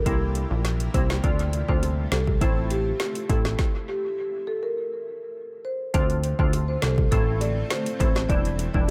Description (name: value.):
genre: dancehall.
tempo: 102 BPM.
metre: 4/4.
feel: straight.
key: D minor.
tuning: A4 = 440 Hz.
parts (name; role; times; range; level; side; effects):
marimba with medium mallets; melody; 0.0-8.8 s; G4 to D5; -32 LUFS; equal; dub echo.
granular cloud pad; sustained chords; 0.0-8.9 s; A3 to C4; -39 LUFS; equal; built-in reverb, sidechain pumping.
plucky analog bass; bass; 0.0-8.9 s; E1 to D2; -27 LUFS; equal; none.
glassy wavetable pluck; accompaniment; 0.1-8.9 s; G3 to F4; -35 LUFS; equal; chorus, dub echo.
afro-pop drum kit; drums; 0.1-8.9 s; hi-hat, kick drum, snare drum; -28 LUFS; equal; none.
bongos; percussion; 0.9-8.9 s; none; -40 LUFS; equal; none.
room: digital ambience.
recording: echo-heavy mix.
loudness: -25 LUFS.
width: mono.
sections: 0.0-5.9 A section; 5.9-8.9 B section.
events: stop 3.6-5.9.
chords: 0.1 C7; 1.2 Dm7; 2.4 Am; 3.6 N.C.; 5.9 Dm7; 7.1 Am; 8.3 Em7b5.